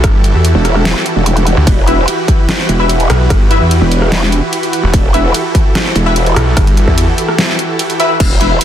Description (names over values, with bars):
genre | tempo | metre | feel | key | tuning
heavy wobble dubstep | 147 BPM | 4/4 | half-time | E minor | A4 = 440 Hz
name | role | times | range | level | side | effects
supersaw chords | sustained chords | 0.0-8.6 s | E3 to B4 | -17 LUFS | right 1 dB | sidechain pumping, low-pass filter
snarling distorted saw bass | bass | 0.0-7.1 s | E1 to E2 | -11 LUFS | equal | distortion, overdrive
dubstep drum kit | drums | 0.0-8.6 s | crash cymbal, hi-hat, ride cymbal, rim click, snare drum | -17 LUFS | equal | overdrive
electronic kick drum | drums | 0.0-8.3 s | none | -12 LUFS | equal | overdrive
growl bass | bass | 0.5-8.6 s | E1 | -12 LUFS | equal | chorus, overdrive
orchestra-hit-like synth stab | stabs | 1.9-8.5 s | E4 to E5 | -16 LUFS | left 2 dB | built-in reverb, tape echo
room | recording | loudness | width
digital ambience | dense, heavily limited modern master | -9 LUFS | side -10 dB against mid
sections
0.0-8.2 A section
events
drop 0.0-8.2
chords
0.0 Emadd9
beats
| 0.04 0.45 0.85 1.26 | 1.67 2.08 2.49 2.89 | 3.30 3.71 4.12 4.53 | 4.93 5.34 5.75 6.16 | 6.57 6.98 7.38 7.79 | 8.20 8.61